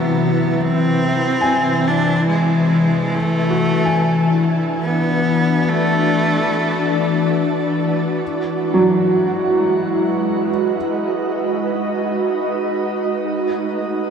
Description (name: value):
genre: ambient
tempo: free time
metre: none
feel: none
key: E major from 8.2 s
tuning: A4 = 439 Hz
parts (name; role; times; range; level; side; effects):
- clear cello; melody; 0.0-7.4 s; G#3 to D4; -22 LUFS; right 2 dB; diffuse ambient delay
- glassy FM pad; sustained chords; 0.0-14.1 s; C3 to E5; -17 LUFS; left 1 dB; ensemble chorus, built-in reverb
- felt-muted upright piano; arpeggios; 0.0-10.8 s; F#3 to G#5; -23 LUFS; right 1 dB; diffuse ambient delay
room: wet shimmer reverb, RT60 6.8 s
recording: dark, warm production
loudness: -15 LUFS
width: side -6 dB against mid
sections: 0.0-8.2 A section; 8.2-14.1 B section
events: filter sweep on ambient pad 8.2-14.1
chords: 0.0 Cmaj7#5; 3.1 Bm7; 8.2 Emaj9; 10.8 G#m7; 13.3 B7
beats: free time